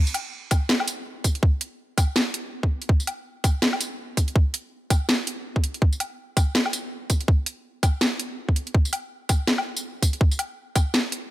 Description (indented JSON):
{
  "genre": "drum and bass",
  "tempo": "164 BPM",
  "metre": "4/4",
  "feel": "swing 59% on 16ths, half-time",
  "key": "none",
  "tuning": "none",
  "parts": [
    { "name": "drum and bass drum kit", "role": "drums", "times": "0.1-11.2 s", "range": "hi-hat, snare drum, tambourine, woodblock", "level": "-25 LUFS", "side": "equal", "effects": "overdrive" },
    { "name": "electronic kick drum", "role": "drums", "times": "0.5-10.8 s", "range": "none", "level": "-20 LUFS", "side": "equal", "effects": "overdrive" }
  ],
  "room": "digital ambience",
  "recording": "none",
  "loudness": "-22 LUFS",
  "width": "side -15 dB against mid",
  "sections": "0.0-11.3 A section",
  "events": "none",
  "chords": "none",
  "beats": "0.33 0.69 1.06 | 1.43 1.79 2.16 2.52 | 2.89 3.26 3.62 3.99 | 4.35 4.72 5.08 5.45 | 5.82 6.18 6.55 6.92 | 7.28 7.65 8.01 8.38 | 8.74 9.11 9.48 9.84 | 10.21 10.57 10.94"
}